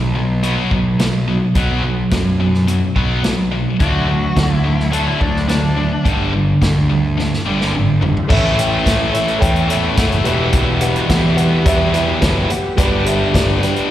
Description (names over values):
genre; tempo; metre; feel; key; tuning
classic rock; 107 BPM; 4/4; straight; B minor; A4 = 439 Hz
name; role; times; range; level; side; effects
cranked stack guitar; riff; 0.0-13.9 s; E2 to G4; -20 LUFS; right 6 dB; overdrive, harmonic tremolo, slapback echo
tight distorted guitar; riff; 0.0-13.9 s; E2 to D4; -20 LUFS; left 6 dB; distortion, slapback echo
fuzz picked electric bass; bass; 0.0-13.6 s; E1 to F#2; -19 LUFS; equal; overdrive
vintage drum kit; drums; 0.4-13.9 s; crash cymbal, hi-hat, kick drum, snare drum, toms; -19 LUFS; equal; none
octave-fuzz lead guitar; second line; 3.8-6.0 s; D4 to A4; -24 LUFS; left 3 dB; distortion
tonewheel organ; sustained chords; 8.0-13.9 s; A3 to D5; -31 LUFS; equal; none
dark upright piano; accompaniment; 8.3-13.9 s; G4 to G5; -21 LUFS; equal; slapback echo
room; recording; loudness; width
light reverb, studio reverb; live gig heard through the venue's PA, recital hall reverb; -13 LUFS; side -12 dB against mid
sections
0.0-8.3 A section; 8.3-13.9 B section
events
drum fill 7.2-8.3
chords
0.0 B5; 3.8 D; 6.1 G5; 8.3 A; 10.3 Em; 12.8 G